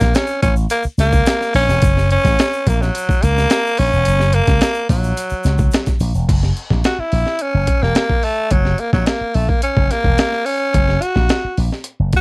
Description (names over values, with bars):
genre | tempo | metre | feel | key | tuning
funk | 108 BPM | 4/4 | straight | F# mixolydian | A4 = 439 Hz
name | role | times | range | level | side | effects
growling tenor saxophone | melody | 0.0-12.2 s | F#3 to F#4 | -18 LUFS | equal | none
slap bass with an envelope filter | bass | 0.0-12.1 s | E1 to C#2 | -16 LUFS | equal | none
breakbeat sampler-style drum kit | drums | 0.0-12.2 s | crash cymbal, hi-hat, kick drum, snare drum | -17 LUFS | equal | none
tube shaker | percussion | 0.0-6.3 s | none | -37 LUFS | left 3 dB | none
room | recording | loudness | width
little or no reverb | dry, close 1970s-style studio recording | -14 LUFS | side -29 dB against mid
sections
0.0-6.3 A section; 6.3-12.2 B section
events
tenor saxophone solo 6.3-12.2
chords
0.0 F#7; 6.3 F#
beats
0.16 0.71 1.27 | 1.83 2.39 2.94 3.50 | 4.06 4.62 5.17 5.73 | 6.29 6.84 7.40 7.96 | 8.52 9.07 9.63 10.19 | 10.75 11.31 11.86